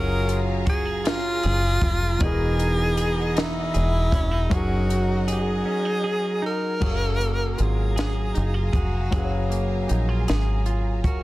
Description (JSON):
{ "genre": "slow six-eight R&B", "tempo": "52 BPM (dotted quarters)", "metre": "6/8", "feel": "straight", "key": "F# major", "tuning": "A4 = 439 Hz", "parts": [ { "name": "breathy tenor saxophone", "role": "melody", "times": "0.0-11.2 s", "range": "E4 to A#4", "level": "-27 LUFS", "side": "equal", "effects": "none" }, { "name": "semi-hollow electric guitar", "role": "second line", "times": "0.0-11.2 s", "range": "E3 to G#4", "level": "-30 LUFS", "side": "right 4 dB", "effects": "none" }, { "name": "warm grand piano", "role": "accompaniment", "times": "0.0-11.2 s", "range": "E3 to E#5", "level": "-30 LUFS", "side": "left 3 dB", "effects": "none" }, { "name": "warm studio string section", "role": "sustained chords", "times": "0.0-11.2 s", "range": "G#4 to A#5", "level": "-37 LUFS", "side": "left 1 dB", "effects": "none" }, { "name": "deep dub fingered electric bass", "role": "bass", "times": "0.0-11.2 s", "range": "E1 to A#1", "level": "-24 LUFS", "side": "equal", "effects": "none" }, { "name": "compact cocktail drum kit", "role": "drums", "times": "0.3-11.2 s", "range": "crash cymbal, hi-hat, kick drum, snare drum", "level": "-26 LUFS", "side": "equal", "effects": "soft clipping on snare" } ], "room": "little or no reverb", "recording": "dense, heavily limited modern master", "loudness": "-21 LUFS", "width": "side -17 dB against mid", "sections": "0.0-6.8 A section; 6.8-11.2 B section", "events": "break 5.7-6.8", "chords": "0.0 F#maj9; 2.2 Emaj9#11; 4.5 F#69; 6.8 F#maj9" }